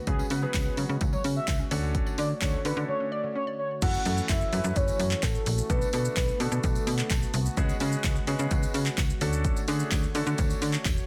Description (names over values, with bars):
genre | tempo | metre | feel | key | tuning
dance-pop | 128 BPM | 4/4 | straight | F# minor | A4 = 442 Hz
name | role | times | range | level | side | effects
warm analog pad | sustained chords | 0.0-11.1 s | C#3 to C#5 | -41 LUFS | equal | chorus, sidechain pumping
expressive synth lead | melody | 0.1-3.7 s | G#4 to E5 | -35 LUFS | equal | chorus, sidechain pumping
warm concert grand piano | accompaniment | 0.1-10.8 s | G#3 to A5 | -38 LUFS | equal | sidechain pumping
hollow square pluck | arpeggios | 0.1-3.6 s | D3 to F#5 | -43 LUFS | equal | chorus, sidechain pumping, delay
slap-like FM bass | bass | 0.1-11.0 s | E1 to D3 | -31 LUFS | equal | sidechain pumping
deep house drum kit | drums | 0.1-11.1 s | crash cymbal, handclaps, hi-hat, kick drum, shaker | -31 LUFS | equal | none
tambourine | percussion | 0.2-11.0 s | none | -48 LUFS | equal | none
soft octave-layered synth lead | melody | 3.8-7.3 s | A4 to F#5 | -34 LUFS | equal | chorus, tremolo
room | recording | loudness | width
little or no reverb | dense, heavily limited modern master | -27 LUFS | mono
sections
0.0-3.8 A section; 3.8-11.1 B section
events
grand piano fill 6.9-7.6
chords
0.1 C#7sus4; 1.7 Dmaj7; 3.8 F#m7; 5.7 Bm7; 7.6 C#7sus4; 9.2 Dmaj7